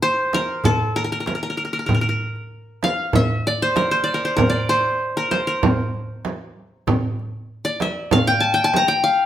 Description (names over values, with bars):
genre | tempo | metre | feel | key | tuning
Turkish makam ensemble | 96 BPM | 4/4 | straight | unclear | A4 = 441 Hz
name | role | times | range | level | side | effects
qanun | melody | 0.0-9.3 s | A4-30c to Bb5 | -19 LUFS | left 1 dB | none
darbuka | percussion | 0.3-8.9 s | none | -24 LUFS | equal | none
frame drum | percussion | 0.3-8.9 s | none | -23 LUFS | right 3 dB | none
room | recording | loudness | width
wet large studio reverb, RT60 0.9 s | band playing live in one room | -18 LUFS | side -11 dB against mid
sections
0.0-9.3 A section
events
none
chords
none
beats
0.02 0.65 1.27 | 1.90 2.52 3.14 3.77 | 4.39 5.01 5.63 6.25 | 6.88 7.50 8.12 8.74